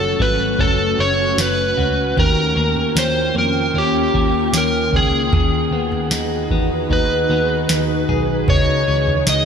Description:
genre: dream pop.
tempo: 76 BPM.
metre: 4/4.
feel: straight.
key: unclear.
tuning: A4 = 440 Hz.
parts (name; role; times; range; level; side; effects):
overdriven slide guitar; melody; 0.0-9.4 s; G4 to D#5; -19 LUFS; equal; ping-pong delay.
ethereal airy pad; sustained chords; 0.0-9.4 s; C#3 to G5; -22 LUFS; right 1 dB; ensemble chorus, built-in reverb.
clean electric guitar; arpeggios; 0.0-9.4 s; C#3 to G#4; -24 LUFS; left 5 dB; lush chorus, ping-pong delay.
vintage muted picked electric bass; bass; 0.0-9.4 s; F#1 to E#2; -23 LUFS; equal; none.
booming analog drum machine; drums; 0.2-9.4 s; kick drum, snare drum, toms; -21 LUFS; right 1 dB; none.
room: moderate lush hall reverb, RT60 2.7 s.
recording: bright 1980s-style digital production.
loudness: -15 LUFS.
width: side -7 dB against mid.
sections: 0.0-9.4 A section.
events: none.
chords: 0.0 F#m; 2.2 D#7; 5.3 G#m7/D#; 8.5 C#madd9.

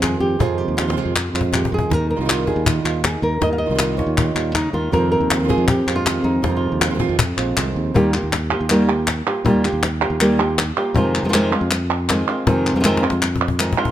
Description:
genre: flamenco.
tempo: 159 BPM.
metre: 4/4.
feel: straight.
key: F minor.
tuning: A4 = 444 Hz.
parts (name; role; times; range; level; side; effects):
flamenco guitar; melody; 0.0-13.9 s; F2 to F5; -20 LUFS; equal; none.
flamenco guitar; stabs; 0.0-7.9 s; C3 to F4; -25 LUFS; right 8 dB; none.
modern bright fingered electric bass; bass; 0.0-13.7 s; Bb1 to F2; -23 LUFS; equal; none.
cajon; percussion; 0.0-13.9 s; none; -24 LUFS; left 3 dB; none.
palmas hand claps; percussion; 0.0-13.9 s; none; -23 LUFS; equal; none.
room: moderate large studio reverb, RT60 1.5 s.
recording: none.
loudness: -16 LUFS.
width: side -11 dB against mid.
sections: 0.0-7.9 A section; 7.9-13.9 B section.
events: drum fill 0.8-1.9, 12.8-13.9.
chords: 0.0 Fm7; 1.9 Ebadd9; 4.9 Fm7; 7.9 Ebadd9; 11.0 Fm7.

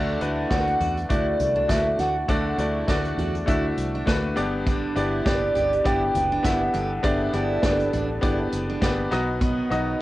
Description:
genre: piano-driven pop.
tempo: 101 BPM.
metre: 4/4.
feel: swing 56% on 16ths.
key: G major.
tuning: A4 = 441 Hz.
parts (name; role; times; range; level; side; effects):
bright grand piano; accompaniment; 0.0-10.0 s; G2 to E5; -26 LUFS; left 2 dB; cassette tape.
dark chamber string section; sustained chords; 0.0-10.0 s; D3 to A4; -35 LUFS; equal; none.
picked steel-string acoustic guitar; riff; 0.0-10.0 s; B3 to G4; -31 LUFS; right 4 dB; cassette tape.
fingered electric bass; bass; 0.0-10.0 s; F#1 to E2; -30 LUFS; equal; none.
unplugged drum kit; drums; 0.2-9.9 s; hi-hat, kick drum, snare drum, toms; -27 LUFS; equal; none.
hollow clarinet-like synth lead; melody; 0.5-8.5 s; D5 to G5; -24 LUFS; right 1 dB; chorus, cassette tape.
room: light reverb.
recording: home recording on cassette.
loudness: -21 LUFS.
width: side -16 dB against mid.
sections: 0.0-10.0 A section.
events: none.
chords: 0.0 D; 4.4 G; 9.1 B.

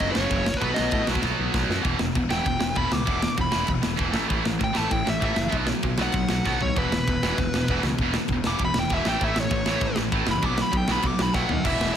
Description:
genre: punk rock.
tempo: 196 BPM.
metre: 4/4.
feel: straight.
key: unclear.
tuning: A4 = 440 Hz.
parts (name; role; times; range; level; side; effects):
dark smooth lead guitar; melody; 0.0-12.0 s; B4 to D6; -28 LUFS; left 1 dB; overdrive, ping-pong delay.
tight distorted guitar; riff; 0.0-12.0 s; E2 to B3; -26 LUFS; right 1 dB; distortion.
fuzz picked electric bass; bass; 0.0-11.9 s; E1 to A2; -29 LUFS; equal; overdrive.
tight metal drum kit; drums; 0.0-11.9 s; crash cymbal, kick drum, snare drum, toms; -27 LUFS; equal; none.
room: light reverb.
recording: none.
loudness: -21 LUFS.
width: side -9 dB against mid.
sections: 0.0-1.8 A section; 1.8-11.6 B section.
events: drum fill 1.2-1.8, 6.5-6.8, 11.3-11.6; lead electric guitar solo 1.8-11.6.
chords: 0.0 F#5; 0.6 B; 1.8 E5; 4.2 A5; 5.5 B5; 6.8 E5; 9.1 A; 10.4 B5.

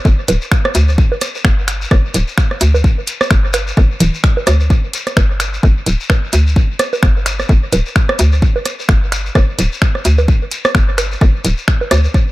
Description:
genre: minimal techno.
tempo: 129 BPM.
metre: 4/4.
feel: swing 57% on 16ths.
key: unclear.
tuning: A4 = 440 Hz.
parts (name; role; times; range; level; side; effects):
shekere; percussion; 0.0-12.2 s; none; -25 LUFS; left 4 dB; dub echo.
hollow knocking FM bass; bass; 0.1-12.1 s; D1 to D2; -14 LUFS; equal; sidechain pumping.
electronic kick drum; drums; 0.1-12.3 s; none; -12 LUFS; equal; none.
house drum kit; drums; 0.3-12.0 s; finger snaps, hi-hat; -20 LUFS; right 1 dB; dub echo.
booming analog drum machine; percussion; 0.3-12.0 s; bongos, rim click, toms; -19 LUFS; right 2 dB; dub echo.
room: little or no reverb.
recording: echo-heavy mix.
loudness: -11 LUFS.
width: side -18 dB against mid.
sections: 0.0-12.3 A section.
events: none.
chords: none.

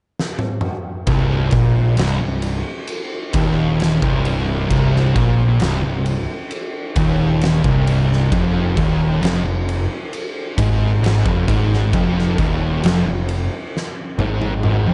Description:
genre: stoner and doom metal.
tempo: 66 BPM.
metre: 4/4.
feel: straight.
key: C minor.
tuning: A4 = 445 Hz.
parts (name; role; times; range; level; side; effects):
oversized low-tuned drum kit; drums; 0.2-14.8 s; kick drum, ride cymbal, snare drum, toms; -25 LUFS; equal; none.
overdriven semi-hollow guitar; riff; 1.1-14.9 s; C2 to Bb2; -25 LUFS; equal; none.
thick fuzz guitar; riff; 1.1-14.9 s; C2 to Bb2; -23 LUFS; equal; distortion.
thick fuzz guitar; riff; 1.1-14.9 s; C2 to Bb2; -24 LUFS; equal; distortion.
fuzz picked electric bass; bass; 1.1-14.9 s; C1 to Bb1; -25 LUFS; equal; overdrive.
room: small room ambience.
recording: dark, warm production, nothing above 10.9 kHz.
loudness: -18 LUFS.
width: mono.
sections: 0.0-1.1 A section; 1.1-14.9 B section.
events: drum fill 0.2-1.1, 13.7-14.9.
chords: 0.0 N.C.; 1.1 Cm; 8.3 Ebsus24.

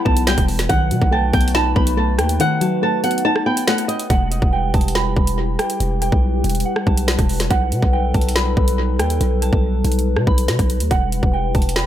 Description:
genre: hip hop, drill.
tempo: 141 BPM.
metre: 4/4.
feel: half-time.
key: E harmonic minor.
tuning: A4 = 443 Hz.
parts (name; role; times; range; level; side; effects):
soft synth bell; second line; 0.0-11.9 s; F#5 to B5; -26 LUFS; right 3 dB; chorus, phaser, analog delay.
soft round pluck; accompaniment; 0.0-4.1 s; D#3 to E4; -22 LUFS; left 5 dB; chorus, low-pass filter, analog delay.
warbly tape-like pad; sustained chords; 0.0-11.9 s; E3 to B4; -25 LUFS; left 1 dB; chorus, built-in reverb.
flamenco guitar; melody; 0.1-4.1 s; D#5 to B5; -22 LUFS; right 2 dB; low-pass filter, analog delay.
distorted 808-style bass; bass; 0.1-11.9 s; E1 to B2; -20 LUFS; equal; distortion.
drill drum kit; drums; 0.1-11.9 s; hi-hat, kick drum, rim click, snare drum; -19 LUFS; equal; analog delay.
room: light reverb, digital ambience.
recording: echo-heavy mix.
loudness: -15 LUFS.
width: side -11 dB against mid.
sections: 0.0-4.1 A section; 4.1-11.9 B section.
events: kick muted 2.4-4.1.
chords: 0.0 Emadd9; 0.7 B7; 4.1 Em; 7.5 B7; 10.9 Emadd9.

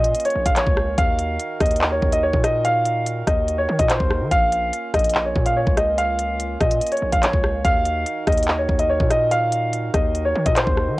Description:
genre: hip hop, drill.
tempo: 144 BPM.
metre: 4/4.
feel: half-time.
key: unclear.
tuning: A4 = 440 Hz.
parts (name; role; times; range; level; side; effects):
warm grand piano; melody; 0.0-11.0 s; C5 to F5; -20 LUFS; equal; low-pass filter, cassette tape, plate reverb.
pedal harmonium; sustained chords; 0.0-10.9 s; Eb3 to Bb4; -31 LUFS; right 6 dB; cassette tape, plate reverb.
distorted 808-style bass; bass; 0.0-11.0 s; Bb1 to Eb3; -25 LUFS; equal; distortion.
drill drum kit; drums; 0.0-10.9 s; handclaps, hi-hat, kick drum, rim click; -21 LUFS; equal; cassette tape.
room: moderate small room reverb, RT60 0.5 s.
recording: home recording on cassette.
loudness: -17 LUFS.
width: side -19 dB against mid.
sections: 0.0-11.0 A section.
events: none.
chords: 0.0 Bbm; 1.0 Ebm; 4.3 Bbm; 7.6 Ebm.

